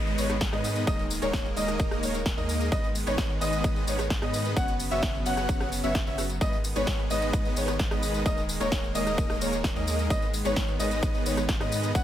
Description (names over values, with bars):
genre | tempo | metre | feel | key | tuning
EDM, festival progressive house | 130 BPM | 4/4 | straight | G# minor | A4 = 440 Hz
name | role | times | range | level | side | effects
supersaw pad | sustained chords | 0.0-12.0 s | C#3 to B3 | -35 LUFS | equal | sidechain pumping
dark grand piano | arpeggios | 0.0-12.0 s | C#5 to F#5 | -32 LUFS | left 1 dB | sidechain pumping, digital delay
dense compressed supersaw | riff | 0.0-12.0 s | G#3 to F#5 | -32 LUFS | equal | sidechain pumping, digital delay
saturated sub bass | bass | 0.0-12.0 s | D#1 to G#2 | -33 LUFS | equal | sidechain pumping
downlifter | sound effects | 0.0-2.7 s | none | -43 LUFS | left 2 dB | none
big-room dance drum kit | drums | 0.1-12.0 s | hi-hat, rim click, snare drum, tambourine | -34 LUFS | equal | none
electronic kick drum | drums | 0.4-12.0 s | none | -28 LUFS | equal | overdrive
room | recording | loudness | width
digital ambience | none | -25 LUFS | side -11 dB against mid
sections
0.0-12.0 A section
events
none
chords
0.0 G#m; 0.9 D#sus4; 2.7 G#m; 4.6 F#sus4; 6.4 G#m; 8.3 D#sus4; 10.1 G#m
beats
0.41 | 0.87 1.33 1.80 2.26 | 2.72 3.18 3.64 4.10 | 4.57 5.03 5.49 5.95 | 6.41 6.87 7.33 7.80 | 8.26 8.72 9.18 9.64 | 10.10 10.56 11.03 11.49 | 11.95